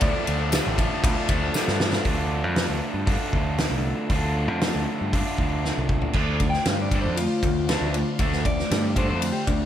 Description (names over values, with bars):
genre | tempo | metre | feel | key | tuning
indie rock | 117 BPM | 4/4 | straight | D minor | A4 = 440 Hz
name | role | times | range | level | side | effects
electric guitar through a small old amp | melody | 0.0-1.5, 6.5-9.7 s | D4 to G5 | -29 LUFS | left 2 dB | slapback echo
tonewheel organ | sustained chords | 0.0-2.0, 6.1-9.7 s | D3 to F5 | -36 LUFS | equal | none
raw garage guitar | riff | 0.0-9.7 s | D3 to F4 | -27 LUFS | equal | overdrive
growling picked electric bass | bass | 0.0-9.7 s | A1 to G2 | -27 LUFS | equal | overdrive
loose indie drum kit | drums | 0.0-9.6 s | crash cymbal, hi-hat, kick drum, ride cymbal, snare drum, toms | -25 LUFS | equal | none
tambourine | percussion | 0.5-1.7 s | none | -36 LUFS | left 5 dB | none
room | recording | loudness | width
moderate lush hall reverb, RT60 1.8 s | big arena sound | -21 LUFS | side -10 dB against mid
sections
0.0-2.1 A section; 2.1-6.1 B section; 6.1-9.7 C section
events
drum fill 1.5-2.1, 5.6-6.1; clean electric guitar solo 6.1-9.7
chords
0.0 Dm; 6.1 Dm7